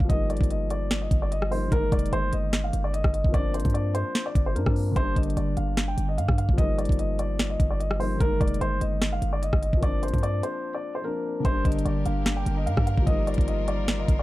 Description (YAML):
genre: hip hop, trap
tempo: 148 BPM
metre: 4/4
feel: half-time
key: G phrygian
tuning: A4 = 440 Hz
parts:
  - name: dark baby grand piano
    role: melody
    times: 0.0-14.2 s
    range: Bb4 to G5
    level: -30 LUFS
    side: left 1 dB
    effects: low-pass filter
  - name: dark concert grand piano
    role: accompaniment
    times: 0.0-14.2 s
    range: D3 to Eb4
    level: -32 LUFS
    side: left 2 dB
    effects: low-pass filter
  - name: warm 808-style bass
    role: bass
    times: 0.0-14.2 s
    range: F1 to G2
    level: -27 LUFS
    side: equal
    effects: none
  - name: trap drum kit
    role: drums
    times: 0.0-14.2 s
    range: hi-hat, kick drum, rim click, snare drum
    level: -25 LUFS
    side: equal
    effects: none
  - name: rich studio string section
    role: sustained chords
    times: 11.4-14.2 s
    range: D3 to Bb4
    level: -37 LUFS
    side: left 1 dB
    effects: none
room: studio ambience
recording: dark, warm production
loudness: -23 LUFS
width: side -17 dB against mid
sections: 0.0-11.4 A section; 11.4-14.2 B section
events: break 10.6-11.4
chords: 0.1 Ebadd9/G; 1.7 Absus2; 3.3 Bbadd9/G; 5.0 Gm; 6.6 Ebadd9/G; 8.2 Absus2; 9.8 Bbadd9/G; 11.4 Gm; 13.1 Ebadd9/G